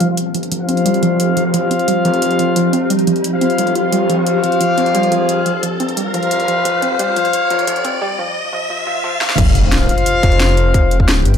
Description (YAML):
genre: dark technical drum and bass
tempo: 176 BPM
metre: 4/4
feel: straight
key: unclear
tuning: A4 = 440 Hz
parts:
  - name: swarming drone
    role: sustained chords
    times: 0.0-11.4 s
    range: F3 to G4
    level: -21 LUFS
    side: equal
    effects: built-in reverb, sidechain pumping
  - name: warbly dusty pluck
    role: arpeggios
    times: 0.0-9.3 s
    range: F3 to F4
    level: -20 LUFS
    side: right 2 dB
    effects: chorus, sidechain pumping, ping-pong delay
  - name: warm brass ensemble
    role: stabs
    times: 0.0-11.1 s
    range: F4 to F5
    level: -17 LUFS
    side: left 3 dB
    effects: low-pass filter, ping-pong delay
  - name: wide detuned saw bass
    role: bass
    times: 0.0-11.4 s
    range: F1 to C2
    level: -20 LUFS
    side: equal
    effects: chorus, high-pass filter
  - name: drum and bass drum kit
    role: drums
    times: 0.0-11.4 s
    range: crash cymbal, hi-hat, snare drum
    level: -22 LUFS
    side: equal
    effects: overdrive
  - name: riser, swell and impact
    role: sound effects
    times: 0.1-10.7 s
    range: none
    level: -23 LUFS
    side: equal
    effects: none
  - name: electronic kick drum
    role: drums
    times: 9.4-11.1 s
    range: none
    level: -14 LUFS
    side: equal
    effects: overdrive
room: moderate plate reverb, RT60 1.0 s, digital ambience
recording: dark, warm production, high-pass filter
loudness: -13 LUFS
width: side -7 dB against mid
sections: 0.0-9.4 A section; 9.4-11.4 B section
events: build-up 0.0-9.4; filter sweep on synth drone 0.0-9.4; filter sweep on synth arpeggio sound 0.0-9.4; filter sweep 0.0-9.4; riser 0.1-9.4; break 8.0-9.4; swell 8.7-9.4; drum fill 9.2; drop 9.4-11.4; impact 9.4-10.7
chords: 0.0 F5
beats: 0.17 0.52 0.86 | 1.20 1.54 1.88 2.22 | 2.56 2.90 3.24 3.58 | 3.92 4.27 4.61 4.95 | 5.29 5.63 5.97 6.31 | 6.65 6.99 7.33 7.67 | 8.02 8.36 8.70 9.04 | 9.38 9.72 10.06 10.40 | 10.74 11.08